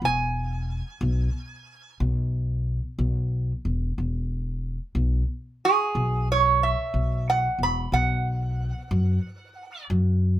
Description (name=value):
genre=acoustic country blues, solo or duo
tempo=61 BPM (dotted quarters)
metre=12/8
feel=straight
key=E major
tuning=A4 = 440 Hz
part: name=upright bass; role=bass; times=0.0-10.4 s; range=E1 to F#2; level=-24 LUFS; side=left 1 dB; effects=none
part: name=metal-body resonator slide guitar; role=melody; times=0.1-9.9 s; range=G#4 to B5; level=-24 LUFS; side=right 4 dB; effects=none
room=light reverb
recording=none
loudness=-23 LUFS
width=side -13 dB against mid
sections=0.0-10.4 A section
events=none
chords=0.0 E; 7.9 B5